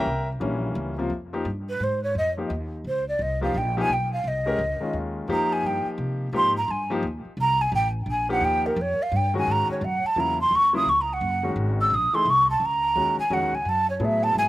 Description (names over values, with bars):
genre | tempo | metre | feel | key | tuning
modal jazz | 172 BPM | 3/4 | swing 64% on 8ths | F minor | A4 = 442 Hz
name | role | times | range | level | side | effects
clear grand piano | accompaniment | 0.0-14.5 s | C3 to A#5 | -28 LUFS | left 2 dB | slapback echo
upright bass | bass | 0.0-14.5 s | F#1 to C3 | -29 LUFS | equal | none
breathy mellow jazz flute | melody | 1.7-14.5 s | Bb4 to E6 | -22 LUFS | right 1 dB | slapback echo
room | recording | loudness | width
little or no reverb | recorded outdoors, with no room sound | -22 LUFS | side -16 dB against mid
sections
0.0-1.1 A section; 1.1-9.5 A section; 9.5-14.5 A section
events
flute solo 1.1-14.5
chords
0.1 C7b9; 1.1 Fm11; 8.4 Eb9; 9.5 G#9sus4; 13.7 B7sus4